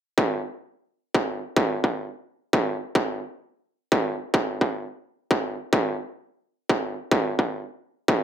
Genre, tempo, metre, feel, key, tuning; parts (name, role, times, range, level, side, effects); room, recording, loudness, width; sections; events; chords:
drum and bass; 173 BPM; 4/4; swing 58% on 16ths, half-time
electronic kick drum; drums; 0.2-8.1 s; -22 LUFS; equal; distortion, high-pass filter on kick, high-pass filter on room
little or no reverb; dark, warm production; -23 LUFS; side -10 dB against mid
0.2-8.2 A section